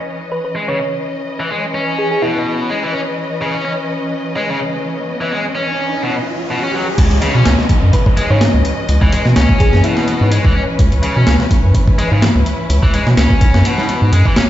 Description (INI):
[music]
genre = breakbeat, breaks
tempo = 126 BPM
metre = 4/4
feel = swing 55% on 16ths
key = C# minor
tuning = A4 = 439 Hz
[part]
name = dark symphonic string section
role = sustained chords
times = 0.0-14.5 s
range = E3 to D#5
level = -22 LUFS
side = left 1 dB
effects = vintage 12-bit sampler grit, sidechain pumping
[part]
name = thumb-piano-like synth pluck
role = melody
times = 0.3-2.7, 7.9-10.3 s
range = E4 to C#5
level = -22 LUFS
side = equal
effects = chorus, old record sound, digital delay
[part]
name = tight distorted guitar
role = riff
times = 0.6-14.4 s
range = B2 to C#4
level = -20 LUFS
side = left 1 dB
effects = distortion, vintage 12-bit sampler grit, low-pass filter, digital delay
[part]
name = riser and downlifter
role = sound effects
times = 4.4-10.8 s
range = none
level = -24 LUFS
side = equal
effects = none
[part]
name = saturated sub bass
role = bass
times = 7.0-14.2 s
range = B1 to B2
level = -12 LUFS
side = equal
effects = none
[part]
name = breakbeat sampler-style drum kit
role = drums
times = 7.0-14.5 s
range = crash cymbal, hi-hat, kick drum, snare drum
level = -14 LUFS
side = equal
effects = overdrive
[sound]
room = moderate studio reverb, RT60 0.5 s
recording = played on a big sound system in a bare room, stone room reverb, nothing above 7.7 kHz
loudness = -12 LUFS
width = side -13 dB against mid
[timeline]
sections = 0.0-7.0 A section; 7.0-14.5 B section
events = riser 4.4-7.0; drop 7.0-14.5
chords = 0.0 C#m9